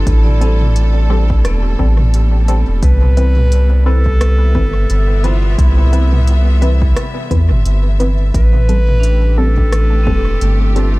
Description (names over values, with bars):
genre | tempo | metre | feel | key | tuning
ambient dub | 87 BPM | 4/4 | swing 57% on 16ths | A minor | A4 = 440 Hz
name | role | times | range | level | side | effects
warm clarinet | melody | 0.0-11.0 s | E4 to B4 | -24 LUFS | equal | dub echo
clear symphonic string section | sustained chords | 0.0-11.0 s | A2 to E5 | -26 LUFS | left 1 dB | none
vibraphone with hard mallets | arpeggios | 0.0-11.0 s | B3 to C6 | -28 LUFS | right 1 dB | dub echo
soft dub sub bass | bass | 0.0-11.0 s | E1 to E2 | -11 LUFS | equal | none
electronic kick drum | drums | 0.1-10.2 s | none | -18 LUFS | equal | overdrive
organic electronic drum kit | drums | 0.1-10.9 s | hi-hat, rim click, toms | -25 LUFS | right 1 dB | overdrive, dub echo
filtered dub chord stab | stabs | 0.4-11.0 s | E3 to B4 | -24 LUFS | equal | chorus, dub echo
room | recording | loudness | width
small room ambience | echo-heavy mix | -10 LUFS | side -21 dB against mid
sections
0.0-11.0 A section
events
none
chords
0.0 Am7; 2.8 Cmaj7; 8.3 Am7